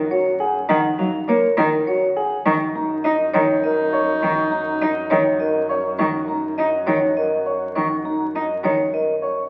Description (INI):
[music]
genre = classical, minimalist pattern music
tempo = 102 BPM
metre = 3/4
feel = straight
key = unclear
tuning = A4 = 442 Hz
[part]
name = rich double bass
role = bass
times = 0.0-9.4 s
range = F#2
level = -36 LUFS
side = equal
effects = none
[part]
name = vibraphone with hard mallets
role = melody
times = 0.1-9.4 s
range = A#4 to C#6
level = -24 LUFS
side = equal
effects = none
[part]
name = dark grand piano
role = arpeggios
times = 0.1-9.4 s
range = D#4 to C#5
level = -26 LUFS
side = equal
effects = none
[part]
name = rich cello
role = accompaniment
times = 0.7-8.7 s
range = D#3 to D#4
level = -25 LUFS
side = equal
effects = none
[part]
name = clear soprano saxophone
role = second line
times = 2.5-5.8 s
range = D#4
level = -27 LUFS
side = equal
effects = none
[sound]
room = moderate recital hall reverb, RT60 1.5 s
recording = very old 78 rpm record, vinyl crackle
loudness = -20 LUFS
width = mono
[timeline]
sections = 0.0-9.5 A section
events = none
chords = 0.0 F#add9; 2.5 D#m/F#